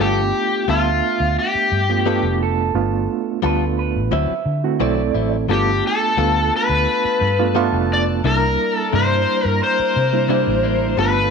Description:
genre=blues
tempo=87 BPM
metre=4/4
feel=straight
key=G mixolydian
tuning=A4 = 440 Hz
part: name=overdriven slide guitar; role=melody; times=0.0-11.3 s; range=F4 to D5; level=-19 LUFS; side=left 4 dB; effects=none
part: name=reed electric piano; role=accompaniment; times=0.0-11.3 s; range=G3 to E5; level=-22 LUFS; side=right 13 dB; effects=overdrive, fast tremolo
part: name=direct-recorded clean electric guitar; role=stabs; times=0.0-11.2 s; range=C3 to A4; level=-25 LUFS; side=left 12 dB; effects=none
part: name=vintage muted fingered electric bass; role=bass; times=0.0-11.3 s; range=F1 to D3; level=-22 LUFS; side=left 1 dB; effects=none
part: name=electric guitar through a small old amp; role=second line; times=2.4-5.3 s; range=A4 to E5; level=-26 LUFS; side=right 11 dB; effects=none
part: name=clear horn section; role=sustained chords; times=5.5-11.3 s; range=A4 to Bb5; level=-28 LUFS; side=left 1 dB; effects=none
room=moderate echo chamber reverb, RT60 1.8 s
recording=1960s-style stereo with parts hard left and right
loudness=-16 LUFS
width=side -5 dB against mid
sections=0.0-5.5 A section; 5.5-11.3 A section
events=none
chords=0.0 G9; 4.1 D9; 5.5 G9; 8.2 C9

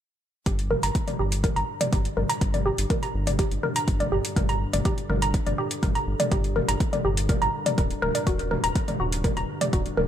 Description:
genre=melodic techno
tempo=123 BPM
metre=4/4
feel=straight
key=G minor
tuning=A4 = 440 Hz
part: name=woody wave-folded pluck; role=arpeggios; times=0.5-10.0 s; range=Gb4 to Bb5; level=-27 LUFS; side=equal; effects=chorus, sidechain pumping, dub echo
part: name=round analog bass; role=bass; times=0.5-10.1 s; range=D1 to G1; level=-28 LUFS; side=equal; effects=sidechain pumping
part: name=analog drone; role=drone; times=1.3-10.1 s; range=G2 to D3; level=-36 LUFS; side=equal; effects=chorus, sidechain pumping
part: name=deep house drum kit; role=drums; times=0.5-10.1 s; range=hi-hat, toms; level=-30 LUFS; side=left 1 dB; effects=overdrive
part: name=electronic kick drum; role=drums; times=0.5-9.8 s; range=none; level=-25 LUFS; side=equal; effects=overdrive
room=light reverb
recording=none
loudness=-22 LUFS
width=side -10 dB against mid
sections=0.5-10.1 A section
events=none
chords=0.5 Gm; 8.3 Ebm

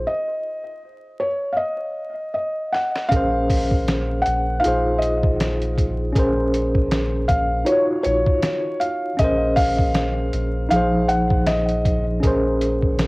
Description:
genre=trip hop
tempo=79 BPM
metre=4/4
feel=swing 57% on 16ths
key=Bb minor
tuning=A4 = 442 Hz
part: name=felt-muted upright piano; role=melody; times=0.0-12.0 s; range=Db5 to Gb5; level=-22 LUFS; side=equal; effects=vintage 12-bit sampler grit, cassette tape, tape echo
part: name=mellow tine electric piano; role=accompaniment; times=0.0-13.1 s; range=F3 to Db5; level=-22 LUFS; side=equal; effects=harmonic tremolo, vintage 12-bit sampler grit, cassette tape
part: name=soft dub sub bass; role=bass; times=0.0-13.1 s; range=Bb1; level=-24 LUFS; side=equal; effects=tube saturation
part: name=trip hop sampler-style drum kit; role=drums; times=2.7-13.1 s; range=hi-hat, kick drum, snare drum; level=-22 LUFS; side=equal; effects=high-pass filter on hats, studio reverb, cassette tape, high-pass filter on snare, high-pass filter on kick
room=light reverb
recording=home recording on cassette, vinyl crackle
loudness=-18 LUFS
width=side -25 dB against mid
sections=0.0-3.1 A section; 3.1-13.1 B section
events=break 0.1-3.1; drum fill 2.7-3.1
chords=0.1 N.C.; 3.1 Bbm9; 4.6 Fm7/Bb; 6.2 Bbm9; 7.7 Ebm9/Bb; 9.2 Bbm9; 10.7 Fm7/Bb; 12.2 Bbm9

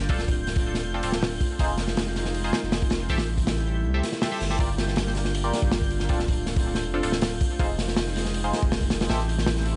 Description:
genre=drum and bass, jungle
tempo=160 BPM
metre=4/4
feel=straight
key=unclear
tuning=A4 = 441 Hz
part: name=airy breathy pad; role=sustained chords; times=0.0-9.8 s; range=G3 to F4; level=-35 LUFS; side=equal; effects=chorus, vintage 12-bit sampler grit
part: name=saturated sub bass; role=bass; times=0.0-9.8 s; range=D1 to C2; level=-31 LUFS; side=equal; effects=none
part: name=twinkling granular texture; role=texture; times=0.0-9.8 s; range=G6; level=-42 LUFS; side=equal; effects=built-in reverb
part: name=band-passed chord stab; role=stabs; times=0.1-9.2 s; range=C4 to E5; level=-35 LUFS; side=equal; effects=phaser, dub echo
part: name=crunchy breakbeat drum kit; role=drums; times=0.1-9.7 s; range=hi-hat, kick drum, snare drum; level=-28 LUFS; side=equal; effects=none
part: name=reverse cymbal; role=sound effects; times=4.2-4.6 s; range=none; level=-43 LUFS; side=equal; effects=none
room=light reverb, small room ambience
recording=vinyl crackle, nothing above 10.3 kHz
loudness=-25 LUFS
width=mono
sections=0.0-9.8 A section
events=reverse cymbal 4.2-4.6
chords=0.1 Dm7; 1.6 Fm7; 3.1 Am7; 4.6 Gm7; 6.1 Dm7; 7.6 Fm7; 9.1 Am7

